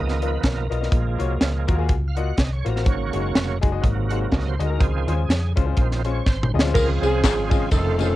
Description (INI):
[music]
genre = uptempo gospel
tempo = 123 BPM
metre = 4/4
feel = swing 57% on 8ths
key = Db major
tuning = A4 = 439 Hz
[part]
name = bright grand piano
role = accompaniment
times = 0.0-8.1 s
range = Ab2 to Eb5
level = -28 LUFS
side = left 9 dB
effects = cassette tape
[part]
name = bright tonewheel organ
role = sustained chords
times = 0.0-8.2 s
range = C3 to Gb5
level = -28 LUFS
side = right 7 dB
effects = slow rotary speaker, overdrive, chorus vibrato, cassette tape
[part]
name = hollow-body short-scale fingered electric bass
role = bass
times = 0.0-8.1 s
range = F1 to F2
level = -24 LUFS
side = equal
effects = tube saturation
[part]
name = crisp fusion drum kit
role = drums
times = 0.1-8.1 s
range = crash cymbal, hi-hat, kick drum, ride cymbal, snare drum, toms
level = -22 LUFS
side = equal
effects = none
[part]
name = dark saxophone section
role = melody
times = 6.7-8.2 s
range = C4 to Bb4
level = -23 LUFS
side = equal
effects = cassette tape
[part]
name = tambourine and handclaps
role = percussion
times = 6.8-8.1 s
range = none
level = -31 LUFS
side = left 11 dB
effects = none
[sound]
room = little or no reverb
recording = home recording on cassette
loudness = -19 LUFS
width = side -16 dB against mid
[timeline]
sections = 0.0-6.8 A section; 6.8-8.2 B section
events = tonewheel organ solo 0.0-6.8; drum fill 6.3-6.8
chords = 0.0 Db13; 0.9 Gbmaj7/Bb; 2.9 Ab7sus4; 3.8 Ab7; 4.8 Dbmaj7